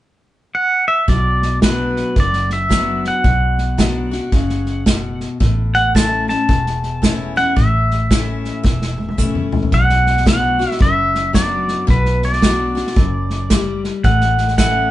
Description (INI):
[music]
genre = honky-tonk and classic country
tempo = 111 BPM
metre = 4/4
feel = swing 62% on 8ths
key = B minor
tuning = A4 = 440 Hz
[part]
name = pedal steel guitar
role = melody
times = 0.5-14.9 s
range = B4 to A5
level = -18 LUFS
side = right 1 dB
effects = none
[part]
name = picked steel-string acoustic guitar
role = accompaniment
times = 1.1-14.9 s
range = E2 to F#4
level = -23 LUFS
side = left 4 dB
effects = none
[part]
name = vintage muted fingered electric bass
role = bass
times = 1.1-14.9 s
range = E1 to B1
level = -20 LUFS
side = equal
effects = none
[part]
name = unplugged drum kit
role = drums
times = 1.1-14.7 s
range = hi-hat, kick drum, snare drum, toms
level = -17 LUFS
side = equal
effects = none
[sound]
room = light reverb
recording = band playing live in one room, nothing above 10.4 kHz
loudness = -14 LUFS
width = side -14 dB against mid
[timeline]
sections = 0.0-1.1 A section; 1.1-9.7 B section; 9.7-14.9 C section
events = drum fill 8.6-9.7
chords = 0.0 N.C.; 1.1 Bm; 5.4 A; 9.7 Bm; 14.0 A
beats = 0.00 0.54 | 1.08 1.62 2.16 2.70 | 3.24 3.78 4.32 4.86 | 5.40 5.94 6.48 7.02 | 7.56 8.10 8.64 9.18 | 9.72 10.26 10.80 11.34 | 11.88 12.42 12.96 13.51 | 14.05 14.59